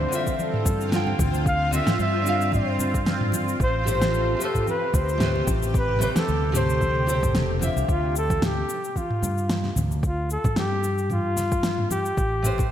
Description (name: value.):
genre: sunset chillout.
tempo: 112 BPM.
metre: 4/4.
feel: swing 55% on 16ths.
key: D minor.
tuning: A4 = 440 Hz.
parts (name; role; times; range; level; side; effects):
breathy flugelhorn; melody; 0.0-12.7 s; F4 to F5; -27 LUFS; left 1 dB; digital delay.
nylon-string guitar; accompaniment; 0.0-8.1, 12.4-12.7 s; D3 to G5; -29 LUFS; left 1 dB; auto-pan, digital delay.
shimmering ambient pad; sustained chords; 0.0-7.8 s; C3 to G4; -31 LUFS; right 1 dB; chorus, built-in reverb, phaser.
fretless electric bass; bass; 0.0-12.7 s; E1 to G2; -26 LUFS; equal; none.
smooth R&B drum kit; drums; 0.1-12.7 s; cabasa, snare drum, toms; -28 LUFS; equal; overdrive, gated reverb.
electronic kick drum; drums; 0.3-12.7 s; none; -25 LUFS; equal; overdrive.
congas; percussion; 0.4-12.7 s; none; -35 LUFS; right 2 dB; none.
room: moderate lush hall reverb, RT60 1.7 s.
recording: bright 1980s-style digital production.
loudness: -21 LUFS.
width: side -10 dB against mid.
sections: 0.0-7.9 A section; 7.9-12.7 B section.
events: none.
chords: 0.0 Dm9; 3.6 Am9; 7.9 Dm; 12.2 Am9.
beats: 0.39 0.92 | 1.46 2.00 2.53 3.07 | 3.60 4.14 4.67 5.21 | 5.75 6.28 6.82 7.35 | 7.89 8.42 8.96 9.49 | 10.03 10.57 11.10 11.64 | 12.17 12.71.